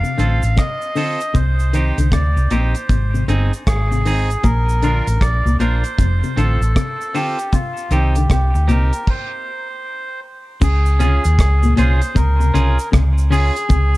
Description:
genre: roots reggae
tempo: 78 BPM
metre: 4/4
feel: swing 64% on 16ths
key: unclear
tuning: A4 = 440 Hz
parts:
  - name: melodica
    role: melody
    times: 0.0-14.0 s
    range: F4 to F5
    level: -23 LUFS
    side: right 1 dB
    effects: tape echo
  - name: electric guitar at the edge of break-up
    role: arpeggios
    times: 0.0-13.9 s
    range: Bb2 to Eb3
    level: -22 LUFS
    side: left 4 dB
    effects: tremolo
  - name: cabasa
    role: percussion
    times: 0.0-14.0 s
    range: none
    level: -39 LUFS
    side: right 6 dB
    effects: none
  - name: clean electric guitar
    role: accompaniment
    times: 0.2-13.5 s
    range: C4 to Bb4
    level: -26 LUFS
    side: right 3 dB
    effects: tape echo
  - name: fingered electric bass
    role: bass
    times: 0.2-14.0 s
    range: F1 to Eb2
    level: -15 LUFS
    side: equal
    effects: none
  - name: deep reggae drum kit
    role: drums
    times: 0.2-13.9 s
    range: crash cymbal, hi-hat, kick drum, rim click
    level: -19 LUFS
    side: equal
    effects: none
room: light reverb, small room ambience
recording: dark, warm production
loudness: -14 LUFS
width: side -19 dB against mid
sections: 0.0-10.6 A section; 10.6-14.0 B section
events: stop 9.1-10.6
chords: 0.0 F; 1.3 Cm; 2.9 Ab; 4.4 Bb; 6.0 F; 7.5 Cm; 9.1 N.C.; 10.6 Db

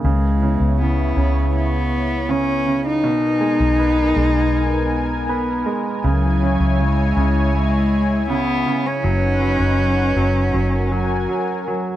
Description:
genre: pop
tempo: 80 BPM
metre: 4/4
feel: straight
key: unclear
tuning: A4 = 439 Hz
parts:
  - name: clear concert grand piano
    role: accompaniment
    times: 0.0-12.0 s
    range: B2 to B3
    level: -24 LUFS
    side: right 5 dB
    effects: none
  - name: lush unison pad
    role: sustained chords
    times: 0.0-12.0 s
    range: B3 to G#5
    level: -25 LUFS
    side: left 2 dB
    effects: chorus
  - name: vintage muted fingered electric bass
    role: bass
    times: 0.0-11.3 s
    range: F#1 to C#2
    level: -20 LUFS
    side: left 1 dB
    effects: none
  - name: dark cello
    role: melody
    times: 0.1-11.7 s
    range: F#3 to D#4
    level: -20 LUFS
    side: left 1 dB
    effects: slapback echo
room: little or no reverb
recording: dry, close 1970s-style studio recording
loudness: -16 LUFS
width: side -13 dB against mid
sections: 0.0-12.0 A section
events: none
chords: 0.0 C#m7; 3.0 G#madd9/B; 6.0 C#m; 9.0 B/F#; 10.5 F#add9

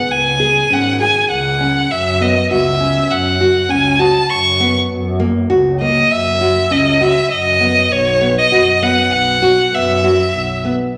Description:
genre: contemporary instrumental, chamber music in an uneven meter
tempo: 100 BPM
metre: 5/4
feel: straight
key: unclear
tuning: A4 = 440 Hz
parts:
  - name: clear violin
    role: melody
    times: 0.0-10.7 s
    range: C#5 to C#6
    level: -16 LUFS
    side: equal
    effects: none
  - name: nylon-string guitar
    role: arpeggios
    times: 0.0-10.9 s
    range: A#3 to G#4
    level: -19 LUFS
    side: equal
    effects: none
  - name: warm double bass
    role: bass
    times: 0.0-11.0 s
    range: G#1 to F#2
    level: -23 LUFS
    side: equal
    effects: none
room: moderate recital hall reverb, RT60 1.4 s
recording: none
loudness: -14 LUFS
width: mono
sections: 0.0-11.0 A section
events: none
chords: 0.0 C#5; 1.9 F#5; 4.9 F#7; 7.9 Bsus4

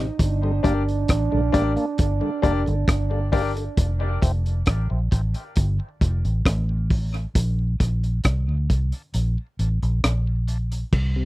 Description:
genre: dub reggae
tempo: 67 BPM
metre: 4/4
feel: straight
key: unclear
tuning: A4 = 437 Hz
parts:
  - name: tonewheel organ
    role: accompaniment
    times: 0.0-11.2 s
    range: F2 to D4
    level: -32 LUFS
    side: left 1 dB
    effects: overdrive, high-pass filter, dub echo
  - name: clear baby grand piano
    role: stabs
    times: 0.0-3.5 s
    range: D4 to D5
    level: -28 LUFS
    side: left 6 dB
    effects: high-pass filter, dub echo
  - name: vintage muted fingered electric bass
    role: bass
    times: 0.0-11.2 s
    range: F1 to D2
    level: -22 LUFS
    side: equal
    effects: none
  - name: breathy trombone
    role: second line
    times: 0.2-3.3 s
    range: D4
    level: -28 LUFS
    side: right 6 dB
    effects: high-pass filter, dub echo
  - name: crunchy breakbeat drum kit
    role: drums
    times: 0.2-11.1 s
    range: crash cymbal, hi-hat, kick drum, rim click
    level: -21 LUFS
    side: equal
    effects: none
room: little or no reverb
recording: dry, close 1970s-style studio recording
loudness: -20 LUFS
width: side -18 dB against mid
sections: 0.0-10.9 A section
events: filter sweep 0.2-10.9; kick muted 9.1-10.9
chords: 0.2 Gm; 3.8 F; 7.4 Bb

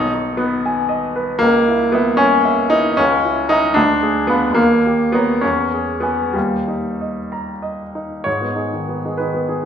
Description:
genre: classical, romantic character piece for solo piano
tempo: 60-80 BPM (dotted quarters)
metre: 6/8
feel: rubato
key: G# minor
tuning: A4 = 441 Hz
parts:
  - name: clear baby grand piano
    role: solo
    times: 0.0-9.7 s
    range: B1 to B5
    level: -15 LUFS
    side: equal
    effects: none
room: wet recital hall reverb, RT60 1.3 s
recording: recorded in a church or concert hall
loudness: -15 LUFS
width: side -8 dB against mid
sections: 0.0-8.3 A section; 8.3-9.7 B section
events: none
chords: 0.0 G#m/B; 1.4 C#m; 3.0 A#dim/C#; 3.8 Ddim7; 4.6 D#7; 5.4 E; 6.4 D#; 8.3 G#m

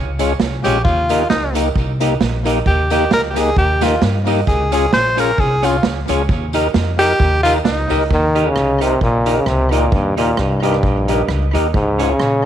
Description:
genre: ska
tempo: 132 BPM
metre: 4/4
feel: swing 55% on 8ths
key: Eb mixolydian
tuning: A4 = 440 Hz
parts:
  - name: upright bass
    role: bass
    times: 0.0-12.5 s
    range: Bb1 to G2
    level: -20 LUFS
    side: equal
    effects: none
  - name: clean electric guitar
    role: accompaniment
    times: 0.2-12.1 s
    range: Db4 to Eb5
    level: -22 LUFS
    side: right 10 dB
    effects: spring reverb, tape echo
  - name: tonewheel organ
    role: stabs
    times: 0.2-12.1 s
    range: Ab3 to Bb4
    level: -23 LUFS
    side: left 10 dB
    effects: overdrive, stopped rotary speaker
  - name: street-band drum kit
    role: drums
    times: 0.2-12.3 s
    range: hi-hat, kick drum, rim click, snare drum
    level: -21 LUFS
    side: right 2 dB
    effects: tape echo
  - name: tambourine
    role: percussion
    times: 0.2-8.0 s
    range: none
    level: -37 LUFS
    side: left 10 dB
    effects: tape echo
  - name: bright tenor saxophone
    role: melody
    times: 0.6-8.1 s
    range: Eb4 to C5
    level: -17 LUFS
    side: left 1 dB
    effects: none
  - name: bright trombone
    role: melody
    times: 8.1-12.5 s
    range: G2 to Eb3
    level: -17 LUFS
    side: left 1 dB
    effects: none
room: light reverb, studio reverb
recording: 1960s-style stereo with parts hard left and right, vinyl crackle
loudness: -13 LUFS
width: side -10 dB against mid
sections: 0.0-8.1 A section; 8.1-12.5 B section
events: tenor saxophone solo 0.0-8.1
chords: 0.0 Db; 0.8 Eb; 4.5 Db; 6.3 Eb; 11.7 Db

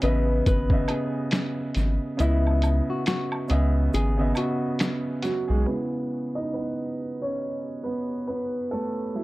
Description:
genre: lo-fi hip hop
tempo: 69 BPM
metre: 4/4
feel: swing 58% on 16ths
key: C# minor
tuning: A4 = 440 Hz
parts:
  - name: nylon-string guitar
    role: melody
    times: 0.0-5.6 s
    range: E4 to B4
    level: -31 LUFS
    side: left 3 dB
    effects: low-pass filter, tape echo
  - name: clear upright piano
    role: accompaniment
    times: 0.0-9.2 s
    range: C#3 to E5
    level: -27 LUFS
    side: right 2 dB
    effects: cassette tape, low-pass filter
  - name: soft dub sub bass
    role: bass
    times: 0.0-5.7 s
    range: G#1 to C#2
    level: -23 LUFS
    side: equal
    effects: none
  - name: lo-fi sampler-style drum kit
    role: drums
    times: 0.0-5.5 s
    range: finger snaps, hi-hat, kick drum, snare drum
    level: -26 LUFS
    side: equal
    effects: none
  - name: egg shaker and woodblock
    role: percussion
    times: 0.0-5.5 s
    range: none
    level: -38 LUFS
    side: right 2 dB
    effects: none
room: light reverb, small room ambience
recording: dark, warm production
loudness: -23 LUFS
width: side -18 dB against mid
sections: 0.0-5.7 A section; 5.7-9.2 B section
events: kick muted 2.2-5.7; upright piano solo 5.7-9.2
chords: 0.0 C#m9

